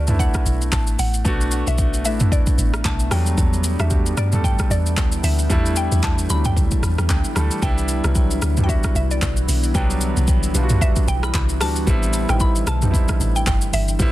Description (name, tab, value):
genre	amapiano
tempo	113 BPM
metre	4/4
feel	swing 58% on 16ths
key	E minor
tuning	A4 = 439 Hz
part	mallet-like synth pluck	melody	0.0-14.1 s	D5 to B5	-29 LUFS	equal	chorus, phaser, tape echo
part	warm concert grand piano	accompaniment	0.0-14.1 s	F#3 to B5	-26 LUFS	right 2 dB	none
part	deep dark ambient pad	sustained chords	0.5-14.1 s	D3 to G5	-29 LUFS	left 1 dB	chorus, built-in reverb
part	deep log drum bass	bass	0.0-14.1 s	G1 to G2	-20 LUFS	equal	none
part	deep house drum kit	drums	0.1-14.1 s	handclaps, hi-hat, kick drum, rim click, shaker, toms	-20 LUFS	equal	none
room	little or no reverb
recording	dense, heavily limited modern master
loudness	-17 LUFS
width	side -16 dB against mid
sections	0.0-14.1 A section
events	grand piano fill 6.8-7.6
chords	0.0 Bm7; 3.1 Em11; 7.6 Cmaj9; 11.9 Am9